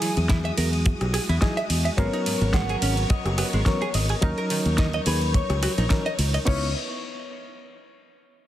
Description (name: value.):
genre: nu-disco, nu disco.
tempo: 107 BPM.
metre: 4/4.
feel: swing 55% on 16ths.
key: C# dorian.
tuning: A4 = 440 Hz.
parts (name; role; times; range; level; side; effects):
electric guitar at the edge of break-up; melody; 0.0-6.7 s; B4 to G#5; -32 LUFS; left 2 dB; ping-pong delay.
barky reed electric piano; accompaniment; 0.0-6.7 s; F#3 to C#5; -30 LUFS; equal; spring reverb, sidechain pumping, ping-pong delay.
bright studio string section; sustained chords; 0.0-6.7 s; F#3 to D#6; -35 LUFS; left 1 dB; sidechain pumping.
direct-recorded clean electric guitar; riff; 0.0-6.7 s; G#2 to E5; -31 LUFS; right 2 dB; lush chorus.
pop drum kit; drums; 0.0-6.6 s; crash cymbal, hi-hat, ride cymbal, rim click, snare drum; -30 LUFS; equal; overdrive.
fingered electric bass; bass; 0.2-6.7 s; F#1 to E2; -24 LUFS; equal; none.
kick drum; drums; 0.3-6.6 s; none; -22 LUFS; equal; none.
room: light reverb, studio reverb.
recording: heavily compressed radio sound.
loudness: -21 LUFS.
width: side -13 dB against mid.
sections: 0.0-6.5 A section; 6.5-8.5 B section.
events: drop 0.0-6.5.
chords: 0.0 Emaj9; 2.0 G#m11; 4.2 D#m7; 6.5 C#m9.